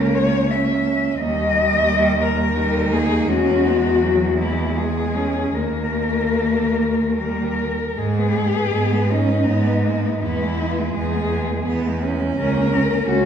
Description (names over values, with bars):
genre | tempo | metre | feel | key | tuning
classical, lyrical piece for cello ensemble | 72-90 BPM | 3/4 | rubato | G# minor | A4 = 440 Hz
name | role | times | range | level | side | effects
warm cello | melody | 0.0-13.3 s | D#4 to E5 | -21 LUFS | left 4 dB | none
rich cello | second line | 0.0-13.3 s | G#3 to D#4 | -25 LUFS | right 5 dB | none
warm cello | accompaniment | 0.0-13.3 s | F#3 to C#4 | -25 LUFS | left 2 dB | none
warm cello | bass | 0.0-13.3 s | C#2 to G#2 | -22 LUFS | right 2 dB | none
room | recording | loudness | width
wet recital hall reverb, RT60 1.5 s | heard from further back in the room | -17 LUFS | side -8 dB against mid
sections
0.0-8.0 A section; 8.0-13.3 B section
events
none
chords
0.0 A#dim/C#; 1.2 D#; 3.3 C#m/E; 5.6 D#5; 7.2 D#; 8.0 G#m; 10.2 E; 12.4 C#sus4